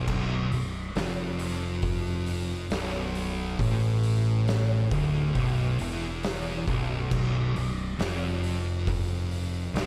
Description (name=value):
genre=stoner and doom metal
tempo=68 BPM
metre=4/4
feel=straight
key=unclear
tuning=A4 = 441 Hz
part: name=thick fuzz guitar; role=riff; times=0.0-9.9 s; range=B1 to A2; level=-33 LUFS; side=equal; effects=distortion
part: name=thick fuzz guitar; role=riff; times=0.0-9.9 s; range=B1 to A2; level=-33 LUFS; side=equal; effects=distortion
part: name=growling fingered electric bass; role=bass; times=0.0-9.9 s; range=B0 to A1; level=-36 LUFS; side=equal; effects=overdrive, tube saturation
part: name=oversized low-tuned drum kit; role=drums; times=0.1-9.9 s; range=crash cymbal, hi-hat, kick drum, snare drum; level=-36 LUFS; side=equal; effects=none
room=little or no reverb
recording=none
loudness=-28 LUFS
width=mono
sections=0.0-9.9 A section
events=none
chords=0.0 Bm